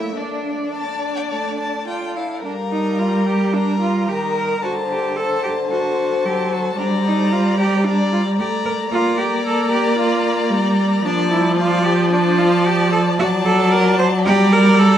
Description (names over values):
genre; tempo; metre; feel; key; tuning
quick classical-period movement for string quartet; 112 BPM; 4/4; rubato; G minor, D minor from 11.0 s; A4 = 439 Hz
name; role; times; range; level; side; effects
warm violin; melody; 0.0-15.0 s; D5 to Bb5; -26 LUFS; left 5 dB; none
rich viola; accompaniment; 0.0-15.0 s; D3 to D4; -18 LUFS; right 1 dB; none
clear cello; bass; 0.0-15.0 s; D4 to C5; -21 LUFS; right 3 dB; none
clear violin; second line; 0.7-15.0 s; Bb4 to A5; -24 LUFS; left 4 dB; none
room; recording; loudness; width
wet cathedral reverb, RT60 5.0 s; in a vast, echoing space; -16 LUFS; side -10 dB against mid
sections
0.0-2.4 A section; 2.4-15.0 B section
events
none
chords
0.2 Dm; 2.4 Gm; 4.6 D7; 6.8 Gm; 8.9 Gm/Bb; 11.0 Dm/F; 13.2 D/F#; 14.3 Gm